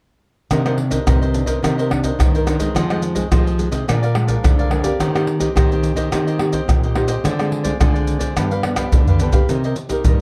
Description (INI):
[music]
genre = samba and choro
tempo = 107 BPM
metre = 4/4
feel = straight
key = C minor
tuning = A4 = 440 Hz
[part]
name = cavaquinho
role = accompaniment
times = 0.5-10.2 s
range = D4 to F5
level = -28 LUFS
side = equal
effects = none
[part]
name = nylon-string guitar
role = accompaniment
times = 0.5-10.2 s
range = F2 to G4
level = -26 LUFS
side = equal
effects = none
[part]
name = nylon-string guitar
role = bass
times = 0.5-10.2 s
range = G2 to G3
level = -24 LUFS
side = equal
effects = none
[part]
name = maracas, surdo, pandeiro and tamborim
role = percussion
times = 0.5-10.2 s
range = none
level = -20 LUFS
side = equal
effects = none
[sound]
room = moderate studio reverb, RT60 0.5 s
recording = dark, warm production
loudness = -18 LUFS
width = mono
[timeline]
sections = 0.5-9.5 A section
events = drum fill 8.8-9.5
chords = 0.5 Cm9; 2.8 Fm7; 3.9 Bb7; 5.0 Eb6; 7.2 Dm7b5; 8.4 G7; 9.5 Cm7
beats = | 0.51 1.07 1.63 2.19 | 2.75 3.32 3.88 4.44 | 5.00 5.56 6.12 6.69 | 7.25 7.81 8.37 8.93 | 9.50 10.06